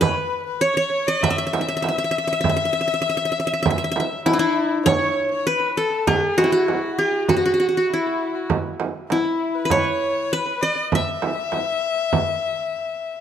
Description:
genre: Arabic maqam ensemble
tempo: 99 BPM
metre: 4/4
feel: straight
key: E maqam rast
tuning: A4 = 440 Hz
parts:
  - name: qanun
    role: melody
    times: 0.0-13.2 s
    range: D4+50c to E5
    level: -20 LUFS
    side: equal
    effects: slapback echo
  - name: dark violin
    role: second line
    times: 0.0-13.2 s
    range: E4 to E5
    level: -26 LUFS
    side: left 7 dB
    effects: none
  - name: frame drum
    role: percussion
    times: 0.0-12.3 s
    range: none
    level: -23 LUFS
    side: right 6 dB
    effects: none
room: light reverb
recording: close, detailed microphones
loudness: -19 LUFS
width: side -9 dB against mid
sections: 0.0-4.9 A section; 4.9-13.2 B section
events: none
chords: none

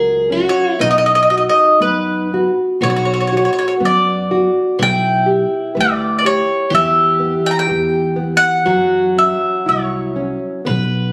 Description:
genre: fado-style ballad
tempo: 61 BPM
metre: 2/4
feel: rubato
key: unclear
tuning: A4 = 439 Hz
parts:
  - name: picked twelve-string acoustic guitar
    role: second line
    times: 0.0-11.1 s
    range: D#4 to B4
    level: -24 LUFS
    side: equal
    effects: none
  - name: nylon-string guitar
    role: accompaniment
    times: 0.0-11.1 s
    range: E3 to B4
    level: -21 LUFS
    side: equal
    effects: none
  - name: upright bass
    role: bass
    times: 0.0-11.1 s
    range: B1 to F#2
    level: -25 LUFS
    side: equal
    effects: none
  - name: mandolin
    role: melody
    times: 0.5-10.4 s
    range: B4 to A#5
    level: -17 LUFS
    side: equal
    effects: none
room: moderate scoring stage reverb, RT60 1.5 s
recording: recorded on a phone in the room, club ambience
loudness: -15 LUFS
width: mono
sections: 0.0-2.8 A section; 2.8-11.1 B section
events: none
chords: 0.0 F#; 0.8 B; 4.8 G6/B; 6.7 Em; 8.7 F#5

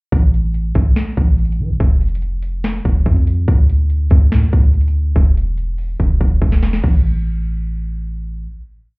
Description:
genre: hip hop, trap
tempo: 143 BPM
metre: 4/4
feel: half-time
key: unclear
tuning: A4 = 441 Hz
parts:
  - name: warm 808-style bass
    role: bass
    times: 0.1-8.5 s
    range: E1 to E3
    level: -15 LUFS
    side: equal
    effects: none
  - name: trap drum kit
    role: drums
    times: 0.1-6.9 s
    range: crash cymbal, finger snaps, hi-hat, kick drum, snare drum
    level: -14 LUFS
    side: equal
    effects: overdrive
room: little or no reverb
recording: heard muffled through a wall, club reverb, EQ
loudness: -13 LUFS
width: side -28 dB against mid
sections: 0.1-6.8 hook; 6.8-9.0 final note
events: drum fill 6.0-6.8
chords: none

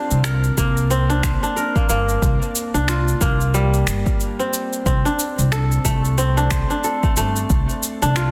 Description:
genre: organic downtempo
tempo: 91 BPM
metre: 4/4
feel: swing 58% on 16ths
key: unclear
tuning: A4 = 441 Hz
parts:
  - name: kora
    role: arpeggios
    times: 0.0-8.3 s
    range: G3 to C5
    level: -24 LUFS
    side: equal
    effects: tape echo, shimmer reverb
  - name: upright bass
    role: bass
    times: 0.1-8.3 s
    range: G1 to C2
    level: -22 LUFS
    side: equal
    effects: none
  - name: electronic shaker and finger snaps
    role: drums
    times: 0.1-8.3 s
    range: none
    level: -29 LUFS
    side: equal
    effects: soft clipping on snare
  - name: electronic kick drum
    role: drums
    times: 0.6-7.7 s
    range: none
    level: -23 LUFS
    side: equal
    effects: none
room: light reverb, digital ambience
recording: dense, heavily limited modern master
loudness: -19 LUFS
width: mono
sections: 0.0-8.3 A section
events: none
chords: 0.0 Csus2; 4.9 D7(no3)

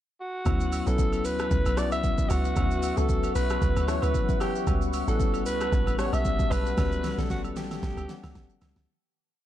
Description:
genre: amapiano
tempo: 114 BPM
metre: 4/4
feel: swing 55% on 16ths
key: D major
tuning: A4 = 439 Hz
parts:
  - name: growling alto saxophone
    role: melody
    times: 0.2-8.6 s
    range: F#4 to E5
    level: -31 LUFS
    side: right 1 dB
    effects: ping-pong delay
  - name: bell-like tine electric piano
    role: accompaniment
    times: 0.5-8.9 s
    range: E3 to F#5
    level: -32 LUFS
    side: left 6 dB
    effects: fast stereo tremolo
  - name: deep dark ambient pad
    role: sustained chords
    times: 1.7-8.9 s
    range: B4 to C#6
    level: -37 LUFS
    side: left 1 dB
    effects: chorus, built-in reverb, sidechain pumping
  - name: woody log drum bass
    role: bass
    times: 0.5-8.9 s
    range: A1 to D2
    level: -28 LUFS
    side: equal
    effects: none
  - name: deep house drum kit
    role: drums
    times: 0.5-8.9 s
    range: hi-hat, kick drum, rim click, shaker, snare drum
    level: -29 LUFS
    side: right 1 dB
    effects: none
  - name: agogo bells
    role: percussion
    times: 0.5-8.8 s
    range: none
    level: -41 LUFS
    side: right 4 dB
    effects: none
room: little or no reverb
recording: dark, warm production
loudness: -24 LUFS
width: side -12 dB against mid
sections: 0.0-0.5 pickup bar; 0.5-8.9 drop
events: drop 0.5-8.9; fade-out 6.8-8.9; drum fill 6.8-8.9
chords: 0.5 Dmaj13; 4.7 A13

